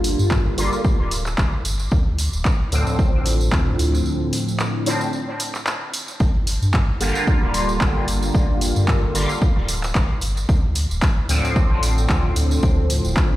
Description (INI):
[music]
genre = dub techno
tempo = 112 BPM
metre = 4/4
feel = swing 56% on 16ths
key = G minor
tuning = A4 = 442 Hz
[part]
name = resonant sweep polysynth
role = stabs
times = 0.0-13.4 s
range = A2 to F4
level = -23 LUFS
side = equal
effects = chorus, phaser, sidechain pumping, dub echo
[part]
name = pure sine sub bass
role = bass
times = 0.0-13.1 s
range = D1 to G2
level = -21 LUFS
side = equal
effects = sidechain pumping
[part]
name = punchy analog drum machine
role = drums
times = 0.0-13.3 s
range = handclaps, hi-hat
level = -27 LUFS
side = equal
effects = dub echo
[part]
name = tambourine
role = percussion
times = 0.0-13.3 s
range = none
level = -31 LUFS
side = right 3 dB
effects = none
[part]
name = electronic kick drum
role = drums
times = 0.3-13.3 s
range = none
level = -19 LUFS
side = equal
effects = none
[sound]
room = light reverb, digital ambience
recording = played on a big sound system in a bare room, stone room reverb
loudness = -17 LUFS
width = side -15 dB against mid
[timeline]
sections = 0.0-13.4 A section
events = filter sweep on analog polysynth 0.0-13.4; break 4.1-6.2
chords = 0.0 Gm7; 1.9 Dm7; 6.2 Gm7; 10.5 Dm7